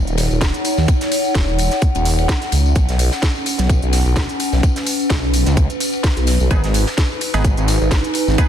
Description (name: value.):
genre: bass house.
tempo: 128 BPM.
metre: 4/4.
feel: swing 55% on 16ths.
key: unclear.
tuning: A4 = 445 Hz.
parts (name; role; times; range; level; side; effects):
phased detuned saw bass; bass; 0.0-8.4 s; Eb1 to Eb2; -16 LUFS; equal; phaser, tube saturation, sidechain pumping.
warbly tape-like pad; texture; 0.0-8.5 s; C#4 to Ab5; -22 LUFS; equal; chorus, built-in reverb, sidechain pumping.
garage drum kit; drums; 0.1-8.5 s; hi-hat, snare drum; -25 LUFS; right 1 dB; none.
tambourine; percussion; 0.1-8.5 s; none; -30 LUFS; left 7 dB; none.
deep reggae drum kit; drums; 0.2-8.5 s; ride cymbal, snare drum; -30 LUFS; left 2 dB; high-pass filter on cymbals, high-pass filter on snare, high-pass filter on room.
electronic kick drum; drums; 0.4-8.5 s; none; -18 LUFS; equal; none.
band-passed chord stab; stabs; 6.5-8.5 s; Cb4 to Cb5; -26 LUFS; right 3 dB; chorus, sidechain pumping, dub echo.
room: little or no reverb.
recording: dense, heavily limited modern master.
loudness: -14 LUFS.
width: side -10 dB against mid.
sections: 0.0-8.5 A section.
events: filter sweep on detuned saw bass 0.0-8.5.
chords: 0.0 Ebm7; 2.8 Bsus2; 6.5 Abm.